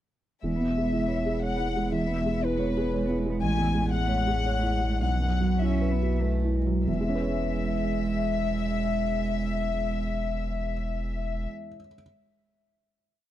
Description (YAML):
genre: neoclassical piano and strings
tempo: 93-122 BPM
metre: 3/4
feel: rubato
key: E major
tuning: A4 = 440 Hz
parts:
  - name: warm chamber violin section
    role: melody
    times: 0.4-11.5 s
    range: B4 to G#5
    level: -32 LUFS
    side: left 6 dB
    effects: none
  - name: rich cello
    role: second line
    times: 0.4-11.5 s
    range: E3 to C#4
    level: -33 LUFS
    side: right 5 dB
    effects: none
  - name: felt-muted upright piano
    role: accompaniment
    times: 0.4-12.0 s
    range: A1 to C#5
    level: -29 LUFS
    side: right 2 dB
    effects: none
  - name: pure sine sub bass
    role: bass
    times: 0.4-11.5 s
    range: E1 to B1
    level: -30 LUFS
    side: equal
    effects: none
room: small room reverb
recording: dry, close 1970s-style studio recording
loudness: -25 LUFS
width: side -12 dB against mid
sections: 0.4-6.9 theme; 6.9-10.7 final chord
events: slowing down 2.7-6.9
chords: 0.4 E6; 3.4 Amaj7; 5.0 Bsus4; 6.9 E6